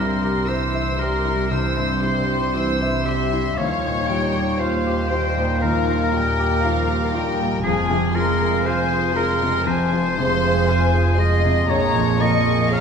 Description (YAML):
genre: cinematic, emotional film score for orchestra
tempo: 59 BPM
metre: 4/4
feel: rubato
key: F minor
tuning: A4 = 437 Hz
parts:
  - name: warm studio violin section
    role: melody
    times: 0.0-12.8 s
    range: F5 to E6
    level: -28 LUFS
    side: left 4 dB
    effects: none
  - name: rich studio violin section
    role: second line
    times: 0.0-12.8 s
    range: Ab4 to F5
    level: -27 LUFS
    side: left 4 dB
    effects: none
  - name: warm oboe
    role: second line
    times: 0.0-12.8 s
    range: Ab4 to F5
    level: -25 LUFS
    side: equal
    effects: none
  - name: bright concert grand piano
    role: accompaniment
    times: 0.0-12.8 s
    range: Bb1 to F5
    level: -27 LUFS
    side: left 2 dB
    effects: none
  - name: warm studio viola section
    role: accompaniment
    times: 0.0-12.8 s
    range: E3 to Bb4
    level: -28 LUFS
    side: right 2 dB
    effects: none
  - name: concert harp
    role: arpeggios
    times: 0.0-12.8 s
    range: Bb2 to F5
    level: -28 LUFS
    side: left 4 dB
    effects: none
  - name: clear studio cello section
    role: bass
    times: 0.0-12.8 s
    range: Eb2 to C3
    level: -26 LUFS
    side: right 3 dB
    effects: none
  - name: dark studio double bass section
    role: bass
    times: 0.0-12.8 s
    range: F1 to Eb2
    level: -25 LUFS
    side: right 3 dB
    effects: none
room: wet recital hall reverb, RT60 1.7 s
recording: recorded in a church or concert hall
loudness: -18 LUFS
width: side -6 dB against mid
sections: 0.0-12.8 A section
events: none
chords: 0.0 C; 3.6 Ebadd9; 7.6 Fm; 11.7 Bbm7